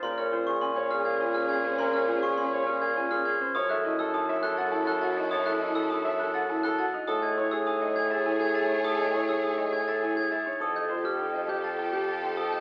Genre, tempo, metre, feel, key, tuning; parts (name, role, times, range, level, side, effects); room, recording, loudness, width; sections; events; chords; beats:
classical, minimalist pattern music; 102 BPM; 3/4; straight; A4 = 435 Hz
clear grand piano; melody; 0.0-12.6 s; G4 to A5; -34 LUFS; equal
rich studio string section; sustained chords; 0.0-12.6 s; Db4 to C#5; -37 LUFS; equal
glockenspiel with brass mallets; arpeggios; 0.0-12.6 s; C6 to A6; -33 LUFS; equal
mellow bassoon; bass; 0.0-12.6 s; F2 to Bb2; -34 LUFS; equal
buzzing marimba with medium hard mallets; arpeggios; 0.2-12.6 s; Db4 to Db5; -38 LUFS; equal
wet large studio reverb, RT60 0.9 s; very old 78 rpm record, vinyl crackle, faint mains hum; -28 LUFS; mono
0.0-12.6 A section
0.0 Bbm7; 3.5 Gbm7; 7.1 Amaj7; 10.6 Fadd9
| 0.02 0.61 1.19 | 1.78 2.37 2.96 | 3.55 4.13 4.72 | 5.31 5.90 6.49 | 7.08 7.67 8.25 | 8.84 9.43 10.02 | 10.61 11.19 11.78 | 12.37